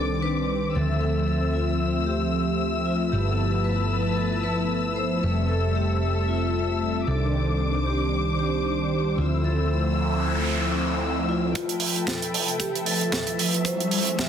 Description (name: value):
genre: nu-disco, nu disco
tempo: 114 BPM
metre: 4/4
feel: swing 56% on 16ths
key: G mixolydian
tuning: A4 = 440 Hz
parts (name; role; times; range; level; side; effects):
- vibraphone with medium hard mallets; melody; 0.0-14.3 s; E4 to E5; -31 LUFS; equal; ping-pong delay
- warm analog pad; accompaniment; 0.0-14.1 s; Eb3 to E5; -27 LUFS; right 1 dB; chorus, sidechain pumping
- muted studio string section; sustained chords; 0.0-14.3 s; F3 to E6; -30 LUFS; left 3 dB; sidechain pumping
- hollow-body short-scale fingered electric bass; bass; 0.0-11.5 s; F1 to D2; -26 LUFS; equal; none
- noise sweep and riser; sound effects; 9.8-14.3 s; none; -31 LUFS; equal; none
- kick drum; drums; 11.6-14.3 s; none; -30 LUFS; equal; high-pass filter on kick, studio reverb, high-pass filter on snare, high-pass filter on room
- tight funk drum kit; drums; 11.6-14.3 s; hi-hat, snare drum; -26 LUFS; right 5 dB; studio reverb
room: moderate plate reverb, RT60 2.7 s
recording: dense, heavily limited modern master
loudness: -22 LUFS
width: side -8 dB against mid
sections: 0.0-11.6 A section; 11.6-14.3 B section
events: noise sweep 9.8-11.6; build-up 11.6-14.3; riser 11.6-14.3; filter sweep on analog synth pad 11.6-14.3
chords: 0.0 Cmadd9; 0.8 Dm9; 3.1 G13; 5.2 Fmaj7; 7.1 Cmadd9; 9.2 Dm9; 11.6 G13; 13.7 Fmaj7